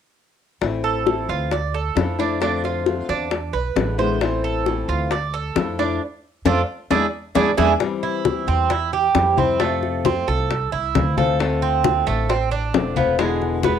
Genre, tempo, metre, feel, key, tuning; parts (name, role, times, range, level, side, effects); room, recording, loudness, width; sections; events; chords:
latin, Cuban son and guajira; 134 BPM; 4/4; straight; A harmonic minor; A4 = 439 Hz
nylon-string guitar; accompaniment; 0.6-13.8 s; B2 to F4; -24 LUFS; left 6 dB
upright bass; bass; 0.6-13.8 s; E1 to F2; -25 LUFS; right 1 dB
bongos; percussion; 0.6-13.8 s; -22 LUFS; left 8 dB
Cuban tres; arpeggios; 0.8-13.8 s; G#3 to D5; -22 LUFS; right 8 dB
congas; percussion; 7.8-13.8 s; -27 LUFS; left 5 dB
moderate studio reverb, RT60 0.6 s; home recording on cassette; -18 LUFS; side -8 dB against mid
0.6-7.8 A section; 7.8-13.8 B section
band accent 6.0-7.8; drum fill 7.6
0.6 Am; 1.5 Dmadd9; 2.4 F6; 3.3 E7; 4.2 Am; 5.1 Dmadd9; 6.0 F6; 6.9 E7; 7.8 Cadd11/E; 9.6 Fmaj7; 11.4 Dm7; 13.2 E7